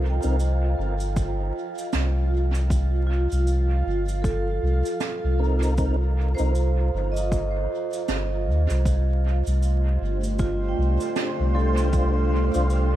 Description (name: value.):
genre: ambient dub.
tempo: 78 BPM.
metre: 4/4.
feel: swing 60% on 16ths.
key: C dorian.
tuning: A4 = 440 Hz.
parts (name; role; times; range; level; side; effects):
granular cloud pad; sustained chords; 0.0-13.0 s; A3 to F5; -31 LUFS; right 1 dB; built-in reverb.
vibraphone with medium hard mallets; arpeggios; 0.0-13.0 s; F4 to G5; -31 LUFS; right 3 dB; dub echo.
soft dub sub bass; bass; 0.0-13.0 s; G1 to Eb2; -22 LUFS; equal; none.
mellow tonewheel organ; stabs; 0.2-0.4, 5.4-6.5, 11.5-12.7 s; C4 to C5; -32 LUFS; left 2 dB; chorus vibrato, slow rotary speaker, dub echo.
cabasa and snare drum; drums; 0.2-12.9 s; none; -34 LUFS; right 4 dB; dub echo.
electronic kick drum; drums; 1.2-12.1 s; none; -26 LUFS; equal; overdrive.
room: studio reverb.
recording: echo-heavy mix, vinyl crackle.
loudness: -21 LUFS.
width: side -13 dB against mid.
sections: 0.0-13.0 A section.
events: none.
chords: 0.0 Cm7; 8.9 Dm7.